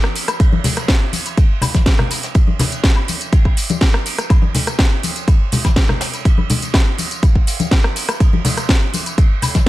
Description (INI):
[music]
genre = house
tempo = 123 BPM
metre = 4/4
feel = straight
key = none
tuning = none
[part]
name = house drum kit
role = drums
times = 0.0-9.7 s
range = hi-hat, rim click, snare drum, tambourine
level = -20 LUFS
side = equal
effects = none
[part]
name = jazz brush drum kit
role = drums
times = 0.0-9.7 s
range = ride cymbal, snare drum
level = -27 LUFS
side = right 5 dB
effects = sidechain pumping on cymbals, high-pass filter on cymbals, high-pass filter on snare, high-pass filter on room
[part]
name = woodblock and congas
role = percussion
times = 0.3-9.6 s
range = none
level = -22 LUFS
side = left 3 dB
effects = sidechain pumping on perc
[part]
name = electronic kick drum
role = drums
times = 0.4-9.7 s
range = none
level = -13 LUFS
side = equal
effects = none
[sound]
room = small room ambience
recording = none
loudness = -13 LUFS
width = side -17 dB against mid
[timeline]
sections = 0.0-9.7 A section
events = none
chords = none